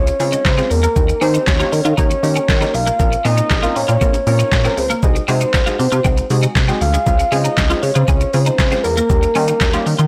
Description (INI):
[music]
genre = dance-pop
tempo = 118 BPM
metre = 4/4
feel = straight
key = unclear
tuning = A4 = 435 Hz
[part]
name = soft octave-layered synth lead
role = melody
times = 0.0-10.1 s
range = Bb4 to F5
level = -22 LUFS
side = equal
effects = chorus, tape echo
[part]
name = punchy chord stab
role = accompaniment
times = 0.0-10.0 s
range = G3 to Db5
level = -26 LUFS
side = equal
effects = chorus, sidechain pumping
[part]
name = twelve-string electric guitar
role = riff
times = 0.0-10.1 s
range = Ab3 to F4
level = -26 LUFS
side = equal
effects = ensemble chorus
[part]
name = chorused synth bass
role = bass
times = 0.0-10.1 s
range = Bb1 to Eb3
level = -20 LUFS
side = equal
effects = sidechain pumping
[part]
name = smooth R&B drum kit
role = drums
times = 0.1-10.1 s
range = handclaps, hi-hat, kick drum, shaker, snare drum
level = -20 LUFS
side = equal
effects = none
[part]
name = tube shaker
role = percussion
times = 0.1-10.1 s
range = none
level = -42 LUFS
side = equal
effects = none
[sound]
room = light reverb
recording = blown-out, overdriven recording, overdrive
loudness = -15 LUFS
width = mono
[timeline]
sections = 0.0-10.1 A section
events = none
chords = 0.0 Dbmaj7; 1.0 Eb7; 3.0 Bbmadd9; 5.0 Ab7/C; 7.1 Dbmaj7; 9.1 Eb7